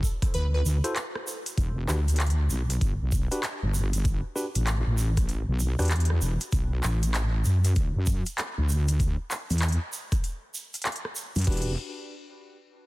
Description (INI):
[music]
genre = glitch hop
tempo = 97 BPM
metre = 4/4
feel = swing 63% on 16ths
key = E minor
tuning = A4 = 440 Hz
[part]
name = electronic kick drum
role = drums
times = 0.0-11.6 s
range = none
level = -26 LUFS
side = equal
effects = none
[part]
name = tube shaker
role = percussion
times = 0.0-11.4 s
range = none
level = -38 LUFS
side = right 3 dB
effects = none
[part]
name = pop drum kit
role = drums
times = 0.2-11.7 s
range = crash cymbal, handclaps, hi-hat, rim click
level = -33 LUFS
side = equal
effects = none
[part]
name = plucky unison lead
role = melody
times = 0.3-0.6 s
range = B4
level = -37 LUFS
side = right 1 dB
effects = dub echo
[part]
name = wobble bass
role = bass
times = 0.3-11.8 s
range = E1 to F#2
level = -24 LUFS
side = equal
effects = chorus
[part]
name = tine electric piano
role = stabs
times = 0.8-5.9, 11.5-11.7 s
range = D4 to C5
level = -36 LUFS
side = equal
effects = vintage 12-bit sampler grit, sidechain pumping, dub echo
[sound]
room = little or no reverb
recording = dense, heavily limited modern master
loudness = -24 LUFS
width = side -20 dB against mid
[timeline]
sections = 0.0-1.6 A section; 1.6-11.5 B section; 11.5-12.9 C section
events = drop 0.0-1.6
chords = 0.0 N.C.; 1.6 Em7; 6.5 Bm7; 11.5 Em7